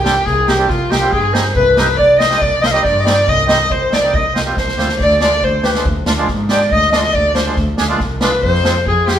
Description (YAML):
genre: klezmer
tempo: 140 BPM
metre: 4/4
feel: straight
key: C harmonic minor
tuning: A4 = 440 Hz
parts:
  - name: mellow clarinet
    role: melody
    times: 0.0-9.2 s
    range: F4 to F5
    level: -15 LUFS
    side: equal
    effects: none
  - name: warm violin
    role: second line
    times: 0.0-9.2 s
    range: F4 to Eb5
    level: -20 LUFS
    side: left 2 dB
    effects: none
  - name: accordion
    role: accompaniment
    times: 0.0-9.2 s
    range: G3 to Ab4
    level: -21 LUFS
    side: right 4 dB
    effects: none
  - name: clear double bass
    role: bass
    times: 0.0-9.1 s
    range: C2 to Ab2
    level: -19 LUFS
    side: equal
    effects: none
  - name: street-band drum kit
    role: drums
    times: 0.1-9.2 s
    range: kick drum, snare drum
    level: -20 LUFS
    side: equal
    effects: none
room: moderate stone room reverb, RT60 1.1 s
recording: band playing live in one room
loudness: -12 LUFS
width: side -10 dB against mid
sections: 0.0-9.2 A section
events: drum fill 4.6-5.0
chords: 0.0 Cm; 5.0 Ddim; 8.4 Fm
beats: 0.26 0.69 1.12 | 1.55 1.98 2.41 2.84 | 3.27 3.70 4.13 4.56 | 4.99 5.42 5.85 6.28 | 6.71 7.14 7.57 8.00 | 8.43 8.86